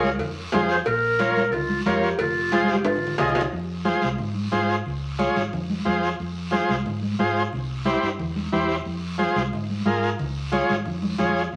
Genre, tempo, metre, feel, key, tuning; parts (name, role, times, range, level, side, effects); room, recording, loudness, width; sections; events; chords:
latin, cumbia; 180 BPM; 4/4; straight; F minor; A4 = 440 Hz
warm clarinet; second line; 0.0-3.5 s; F4 to C5; -27 LUFS; equal
overdriven combo organ; accompaniment; 0.0-11.4 s; E4 to Eb5; -26 LUFS; equal
hollow-body short-scale fingered electric bass; bass; 0.0-11.6 s; F1 to Ab2; -32 LUFS; equal
congas; percussion; 0.0-11.6 s; -31 LUFS; equal
guiro; percussion; 0.0-11.6 s; -41 LUFS; equal
cowbell and timbales; percussion; 0.2-3.4 s; -31 LUFS; equal
wet studio reverb, RT60 0.8 s; vinyl crackle; -24 LUFS; mono
0.0-3.5 A section; 3.5-11.6 B section
drum fill 2.5-3.5
0.0 Db; 0.9 Bbm; 2.2 Fm; 4.9 Db; 6.2 Fm; 7.5 C; 8.9 Fm; 10.2 Db